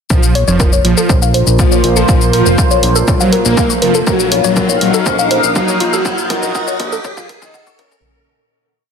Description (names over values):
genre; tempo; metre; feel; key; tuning
melodic techno; 121 BPM; 4/4; straight; unclear; A4 = 443 Hz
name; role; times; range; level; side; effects
mellow synth brass; melody; 0.1-7.9 s; Db3 to Bb4; -20 LUFS; right 1 dB; chorus, sidechain pumping, tape echo
big bright polysynth; second line; 0.1-7.9 s; Db3 to Bb3; -19 LUFS; equal; cassette tape, sidechain pumping, tape echo
sweeping resonant pad; sustained chords; 0.1-8.0 s; Bb3 to F5; -19 LUFS; equal; chorus, sidechain pumping
woody wave-folded pluck; arpeggios; 0.1-8.0 s; F4 to Db6; -18 LUFS; left 2 dB; chorus, sidechain pumping, tape echo
fat analog bass; bass; 0.1-7.9 s; F1 to Bb1; -18 LUFS; equal; sidechain pumping
analog drone; drone; 1.2-8.1 s; Bb2 to Bb3; -25 LUFS; equal; none
electronic kick drum; drums; 0.1-8.0 s; none; -15 LUFS; equal; none
electronic shaker and hi-hat; drums; 0.1-8.0 s; none; -20 LUFS; left 5 dB; none
riser; sound effects; 2.7-8.0 s; none; -24 LUFS; equal; none
room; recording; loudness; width
moderate lush hall reverb, RT60 1.8 s; dense, heavily limited modern master, high-pass filter; -10 LUFS; side -6 dB against mid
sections
0.1-8.0 build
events
build-up 0.1-8.0; filter sweep on analog polysynth 0.1-8.0; filter sweep 0.1-8.0; riser 2.7-8.0; drum fill 4.1-8.0; fade-out 5.4-8.0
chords
0.1 Bb5; 4.1 Ebmadd9/Bb